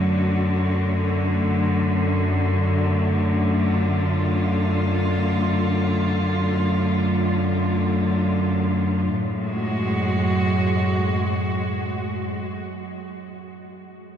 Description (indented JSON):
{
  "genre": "dark ambient drone",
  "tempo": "free time",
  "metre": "none",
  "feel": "none",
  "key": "F# harmonic minor",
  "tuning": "A4 = 442 Hz",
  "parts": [
    { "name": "clear chamber cello section", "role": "sustained chords", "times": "0.0-12.6 s", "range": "F#2 to F#4", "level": "-23 LUFS", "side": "left 1 dB", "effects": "none" },
    { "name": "deep rumbling drone", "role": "drone", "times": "0.0-12.3 s", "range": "F#2 to F#3", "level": "-23 LUFS", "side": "equal", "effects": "built-in reverb" }
  ],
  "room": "wet huge ambient reverb, RT60 8.3 s",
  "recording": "none",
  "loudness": "-19 LUFS",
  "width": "side -8 dB against mid",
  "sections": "0.0-9.1 A section; 9.1-13.0 B section",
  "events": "none",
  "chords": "0.0 D/F#; 9.1 F#madd9"
}